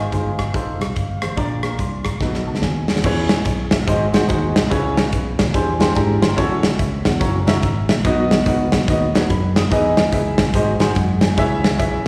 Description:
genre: uptempo gospel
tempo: 144 BPM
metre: 4/4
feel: swing 62% on 8ths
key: E major from 3.0 s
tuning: A4 = 441 Hz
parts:
  - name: warm grand piano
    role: accompaniment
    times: 0.0-12.1 s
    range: Ab2 to E6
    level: -23 LUFS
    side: equal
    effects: slapback echo
  - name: fingered electric bass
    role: bass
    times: 0.0-12.0 s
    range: F1 to G#2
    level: -24 LUFS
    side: equal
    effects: none
  - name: modern studio drum kit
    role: drums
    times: 0.1-11.9 s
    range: crash cymbal, hi-hat, kick drum, rim click, snare drum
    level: -21 LUFS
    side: equal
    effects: none
room: light reverb, studio ambience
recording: live gig heard through the venue's PA, recital hall reverb, studio reverb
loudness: -18 LUFS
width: mono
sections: 0.0-3.0 A section; 3.0-12.1 B section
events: drum fill 2.2-3.0; grand piano fill 5.1-6.4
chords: 0.0 Ab6; 0.5 F7; 1.4 Bb; 2.2 B7; 3.0 E6; 3.9 G#7; 4.7 C#m7; 5.5 E7alt; 6.4 A6; 7.2 F#7; 8.0 B; 9.7 Emaj7; 10.5 G#7; 11.4 C#m7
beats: 0.12 0.54 0.96 | 1.38 1.79 2.21 2.63 | 3.04 3.46 3.88 4.29 | 4.71 5.13 5.54 5.96 | 6.38 6.80 7.21 7.63 | 8.05 8.46 8.88 9.30 | 9.71 10.13 10.55 10.97 | 11.38 11.80

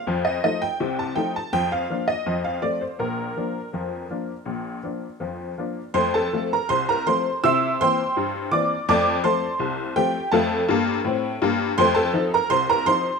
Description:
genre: ragtime piano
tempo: 82 BPM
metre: 2/4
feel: straight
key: Bb major, F major from 5.9 s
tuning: A4 = 441 Hz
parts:
  - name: honky-tonk upright piano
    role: solo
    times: 0.0-13.2 s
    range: Bb1 to E6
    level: -20 LUFS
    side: equal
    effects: none
room: light reverb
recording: minimal, uncompressed stereo recording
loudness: -20 LUFS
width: side -5 dB against mid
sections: 0.0-5.9 A section; 5.9-13.2 B section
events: none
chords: 0.1 F7; 1.5 Bb/F; 2.3 F; 3.0 Bb; 5.9 F; 7.4 C7; 8.9 F; 11.8 F7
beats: | 0.07 0.79 | 1.52 2.25 | 2.99 3.73 | 4.47 5.21 | 5.95 6.68 | 7.42 8.14 | 8.87 9.60 | 10.33 11.05 | 11.78 12.51

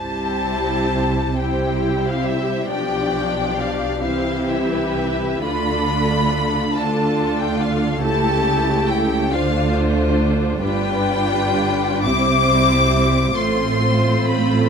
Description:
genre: classical, slow romantic movement for string orchestra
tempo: 40-48 BPM (dotted quarters)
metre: 6/8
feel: rubato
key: C major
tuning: A4 = 440 Hz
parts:
  - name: warm studio violin section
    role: melody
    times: 0.0-14.7 s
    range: E5 to D6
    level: -22 LUFS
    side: left 3 dB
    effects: none
  - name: warm studio violin section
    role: second line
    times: 0.0-14.7 s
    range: E4 to D5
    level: -24 LUFS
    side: left 2 dB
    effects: none
  - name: rich studio viola section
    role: accompaniment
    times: 0.0-14.7 s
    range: E3 to E4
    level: -22 LUFS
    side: right 1 dB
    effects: none
  - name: warm studio cello section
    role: bass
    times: 0.0-14.7 s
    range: G2 to D3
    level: -25 LUFS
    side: right 2 dB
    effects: none
  - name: warm studio double bass section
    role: bass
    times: 0.0-14.7 s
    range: G1 to D2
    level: -25 LUFS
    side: right 2 dB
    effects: none
room: light reverb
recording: close, detailed microphones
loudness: -17 LUFS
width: side -6 dB against mid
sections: 0.0-14.7 A section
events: none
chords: 0.0 C; 2.7 G7/B; 4.0 C; 5.5 Dm; 8.0 A7/C#; 9.3 Dm7; 10.6 G7; 12.1 C; 13.4 F/A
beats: 1.39 | 2.70 4.01 | 5.46 6.75 | 8.03 9.34 | 10.64 12.07 | 13.38

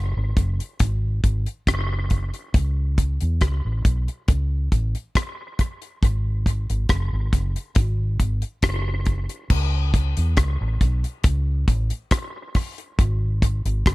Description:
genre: dub reggae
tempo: 69 BPM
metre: 4/4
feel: straight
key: unclear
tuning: A4 = 439 Hz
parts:
  - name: vintage muted fingered electric bass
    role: bass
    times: 0.0-13.9 s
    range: F#1 to E2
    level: -22 LUFS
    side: equal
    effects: none
  - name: damped 70s drum kit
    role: drums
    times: 0.4-13.9 s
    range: crash cymbal, hi-hat, kick drum, rim click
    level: -21 LUFS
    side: equal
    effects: none
room: little or no reverb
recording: none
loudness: -20 LUFS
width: side -20 dB against mid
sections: 0.0-9.5 A section; 9.5-13.9 B section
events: none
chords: none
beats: 0.80 1.67 | 2.54 3.41 4.28 5.15 | 6.02 6.89 7.76 8.63 | 9.51 10.38 11.25 12.12 | 12.99 13.86

